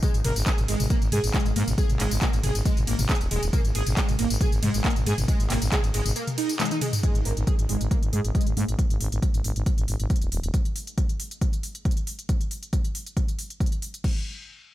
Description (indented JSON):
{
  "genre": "driving peak-time techno",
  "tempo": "137 BPM",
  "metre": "4/4",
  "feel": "straight",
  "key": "unclear",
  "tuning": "A4 = 440 Hz",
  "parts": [
    { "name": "overdriven synth lead", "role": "riff", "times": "0.0-8.6 s", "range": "G#3 to G#4", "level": "-30 LUFS", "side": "right 1 dB", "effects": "distortion, ensemble chorus, sidechain pumping, dub echo" },
    { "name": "electronic kick drum", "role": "drums", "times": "0.0-14.1 s", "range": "none", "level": "-24 LUFS", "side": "equal", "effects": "studio reverb" },
    { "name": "techno drum kit", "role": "drums", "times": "0.0-14.1 s", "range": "crash cymbal, handclaps, hi-hat, ride cymbal, tambourine, toms", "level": "-30 LUFS", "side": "left 1 dB", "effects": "overdrive, studio reverb" },
    { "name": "growling FM bass", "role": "bass", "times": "0.1-10.5 s", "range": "D#1 to G#2", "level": "-26 LUFS", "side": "equal", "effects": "sidechain pumping" }
  ],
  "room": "digital ambience",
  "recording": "none",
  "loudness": "-22 LUFS",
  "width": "side -14 dB against mid",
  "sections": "0.0-7.0 A section; 7.0-14.0 B section",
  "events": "drop 0.0-7.0; kick drops out 6.2-7.0; drum fill 6.6-7.0; filter sweep on analog synth lead 7.0-8.8",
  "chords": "0.0 G#5; 14.0 N.C.",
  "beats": "| 0.03 0.47 0.90 1.34 | 1.78 2.22 2.65 3.09 | 3.53 3.97 4.41 4.84 | 5.28 5.72 6.16 6.60 | 7.03 7.47 7.91 8.35 | 8.79 9.22 9.66 10.10 | 10.54 10.98 11.41 11.85 | 12.29 12.73 13.17 13.60 | 14.04"
}